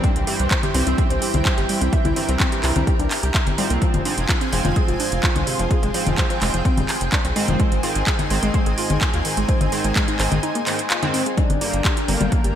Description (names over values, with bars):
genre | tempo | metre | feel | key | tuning
melodic techno | 127 BPM | 4/4 | straight | unclear | A4 = 439 Hz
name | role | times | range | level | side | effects
lush unison pad | sustained chords | 0.0-12.6 s | D4 to Ab5 | -28 LUFS | equal | chorus, sidechain pumping
warbly dusty pluck | arpeggios | 0.0-12.5 s | C3 to E5 | -26 LUFS | left 1 dB | chorus, cassette tape, sidechain pumping, ping-pong delay
sync-sweep polysynth | stabs | 0.0-12.6 s | G2 to C4 | -27 LUFS | right 3 dB | chorus, sidechain pumping, ping-pong delay
electronic kick drum | drums | 0.0-12.4 s | none | -21 LUFS | equal | none
house drum kit | drums | 0.0-12.5 s | congas, handclaps, hi-hat | -24 LUFS | left 1 dB | gated reverb
tight sequencer bass | bass | 0.2-12.5 s | F1 to Eb2 | -23 LUFS | equal | sidechain pumping
expressive synth lead | melody | 11.4-12.6 s | Bb3 to D4 | -27 LUFS | left 3 dB | lush chorus, cassette tape, sidechain pumping, ping-pong delay
room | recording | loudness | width
moderate lush hall reverb, RT60 1.8 s, digital ambience | bright 1980s-style digital production | -17 LUFS | side -10 dB against mid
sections
0.0-12.6 A section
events
kick drops out 10.4-11.4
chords
0.0 C; 3.8 Fm; 7.6 Ab; 11.4 Gm